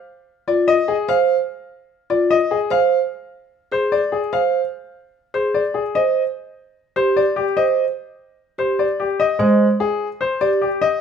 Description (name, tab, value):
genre	classical, minimalist pattern music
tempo	148 BPM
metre	4/4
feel	straight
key	Ab lydian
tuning	A4 = 440 Hz
part	clear concert grand piano	melody	0.5-11.0 s	G4 to F5	-19 LUFS	left 5 dB	none
part	vibraphone with soft mallets	arpeggios	0.5-10.7 s	F4 to C5	-19 LUFS	right 4 dB	none
part	bright baby grand piano	accompaniment	9.4-9.7 s	Ab3	-15 LUFS	equal	none
room	light reverb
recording	none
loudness	-16 LUFS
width	side -7 dB against mid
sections	0.0-9.2 A section; 9.2-11.0 A section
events	none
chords	0.0 F5; 2.7 Ab; 6.0 N.C.; 9.2 Abmaj7